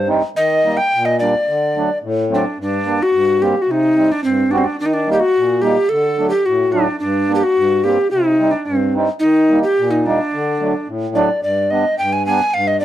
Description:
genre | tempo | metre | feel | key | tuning
klezmer | 108 BPM | 2/4 | straight | D phrygian dominant | A4 = 445 Hz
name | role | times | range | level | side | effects
mellow hollow tenor recorder | melody | 0.0-12.8 s | C4 to Ab5 | -15 LUFS | equal | none
mellow accordion | accompaniment | 0.0-12.8 s | G2 to F#4 | -19 LUFS | right 1 dB | none
room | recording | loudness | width
moderate studio reverb, RT60 0.6 s | none | -14 LUFS | side -12 dB against mid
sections
0.0-2.6 A section; 2.6-11.4 A section; 11.4-12.8 B section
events
none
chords
0.4 Eb; 1.5 D; 2.6 Gm; 3.7 Cm; 4.8 Eb; 5.9 D; 7.0 Gm; 8.1 Cm; 9.2 Eb; 10.3 D; 11.4 G

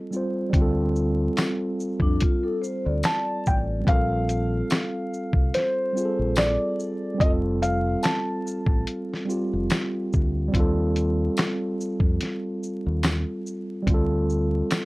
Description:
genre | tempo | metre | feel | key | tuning
lo-fi hip hop | 72 BPM | 4/4 | swing 57% on 16ths | Bb major | A4 = 440 Hz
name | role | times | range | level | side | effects
mellow tine electric piano | accompaniment | 0.0-14.8 s | G3 to C5 | -26 LUFS | right 1 dB | medium stereo tremolo, cassette tape, low-pass filter
lo-fi sampler-style drum kit | drums | 0.1-14.8 s | handclaps, hi-hat, kick drum, shaker, snare drum | -23 LUFS | equal | none
deep dub fingered electric bass | bass | 0.5-14.6 s | F1 to F2 | -26 LUFS | equal | none
tambourine | percussion | 1.4-14.8 s | none | -40 LUFS | left 3 dB | none
vibraphone with soft mallets | second line | 2.0-3.8 s | D4 to D5 | -30 LUFS | left 3 dB | low-pass filter, tape echo
felt-muted upright piano | melody | 3.0-8.8 s | C5 to A5 | -27 LUFS | equal | low-pass filter
room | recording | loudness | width
light reverb | vinyl crackle | -22 LUFS | side -21 dB against mid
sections
0.0-14.8 A section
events
none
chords
0.0 Ebadd9; 0.5 Dm7; 3.9 Bb69; 7.2 F; 10.5 Ebadd9; 13.9 Dm7

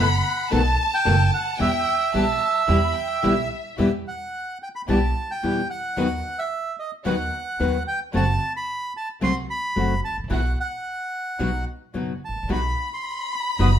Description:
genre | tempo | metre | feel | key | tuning
tango | 110 BPM | 4/4 | rubato | E harmonic minor | A4 = 440 Hz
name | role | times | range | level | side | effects
bandoneon | melody | 0.0-13.7 s | D#5 to D#6 | -26 LUFS | right 3 dB | none
rich chamber violin section | second line | 0.0-3.8, 12.5-13.8 s | E5 to B5 | -26 LUFS | left 2 dB | none
nylon-string guitar | accompaniment | 0.0-13.7 s | B2 to B4 | -24 LUFS | left 3 dB | none
warm studio string section | stabs | 0.0-13.8 s | A3 to A4 | -33 LUFS | right 1 dB | none
upright bass | bass | 0.0-13.8 s | F#1 to E2 | -24 LUFS | right 1 dB | none
room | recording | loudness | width
light reverb | minimal, uncompressed stereo recording | -21 LUFS | side -9 dB against mid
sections
0.0-3.8 A section; 3.8-13.8 B section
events
none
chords
0.0 B7sus4; 0.5 B7; 1.6 Em; 6.0 B/D#; 8.1 F#dim; 10.3 Bsus4; 11.4 B

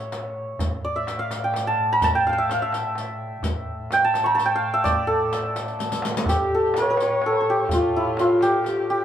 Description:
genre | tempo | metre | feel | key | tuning
Persian modal ensemble | 84 BPM (dotted quarters) | 6/8 | straight | A dastgah homayun | A4 = 440 Hz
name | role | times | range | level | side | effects
santur | melody | 0.0-9.0 s | E4 to C#6 | -21 LUFS | right 1 dB | none
warm double bass | drone | 0.0-9.0 s | A2 | -34 LUFS | left 1 dB | none
riq | percussion | 0.1-8.8 s | none | -32 LUFS | left 2 dB | none
tombak | percussion | 0.1-8.8 s | none | -31 LUFS | equal | none
dark kamancheh | second line | 6.3-9.0 s | F4 to C#5 | -28 LUFS | left 4 dB | none
room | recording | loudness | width
wet studio ambience, RT60 0.5 s | band playing live in one room | -20 LUFS | side -10 dB against mid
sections
0.0-6.3 A section; 6.3-9.0 B section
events
drum fill 5.8-6.3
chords
none

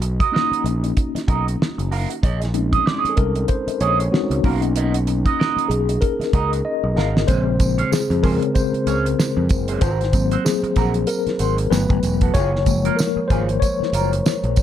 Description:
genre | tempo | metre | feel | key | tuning
lush 1970s-style soul | 95 BPM | 4/4 | swing 58% on 16ths | unclear | A4 = 440 Hz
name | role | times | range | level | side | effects
electric guitar through a small old amp | riff | 0.0-14.5 s | Bb3 to F5 | -25 LUFS | right 8 dB | wah
growling fingered electric bass | bass | 0.0-14.6 s | Fb1 to F2 | -21 LUFS | equal | overdrive
damped 70s drum kit | drums | 0.0-14.6 s | hi-hat, kick drum, snare drum | -21 LUFS | equal | none
mellow tine electric piano | accompaniment | 0.3-14.6 s | Db3 to Eb5 | -22 LUFS | left 4 dB | medium stereo tremolo
tambourine | percussion | 7.3-14.6 s | none | -34 LUFS | right 6 dB | none
room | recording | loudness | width
little or no reverb | dark, warm production | -17 LUFS | side -11 dB against mid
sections
0.0-7.3 A section; 7.3-14.6 B section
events
tine electric piano solo 0.0-7.3, 7.3-14.6; drum fill 6.7-7.3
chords
0.0 Cbmaj7; 2.2 Bbm11; 4.4 Cbmaj7; 7.3 Bbm9; 9.8 Ab9; 11.7 Gmaj9; 12.4 Gbmaj9

